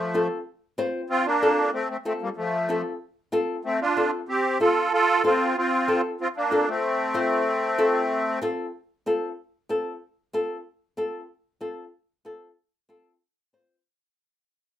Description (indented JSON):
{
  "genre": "latin",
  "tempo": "188 BPM",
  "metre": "4/4",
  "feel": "straight",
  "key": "F major",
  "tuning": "A4 = 440 Hz",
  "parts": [
    { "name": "musette accordion", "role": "melody", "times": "0.0-8.4 s", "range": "F3 to A4", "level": "-22 LUFS", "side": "right 1 dB", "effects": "none" },
    { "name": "flamenco guitar", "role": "accompaniment", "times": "0.1-13.8 s", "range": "C4 to C5", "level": "-25 LUFS", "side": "left 1 dB", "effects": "none" }
  ],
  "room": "moderate studio reverb, RT60 0.5 s",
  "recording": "rough home demo mix",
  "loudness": "-22 LUFS",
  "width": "side -11 dB against mid",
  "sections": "0.0-8.7 A section; 8.7-13.9 B section",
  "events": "fade-out 8.7-13.9",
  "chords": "0.0 F"
}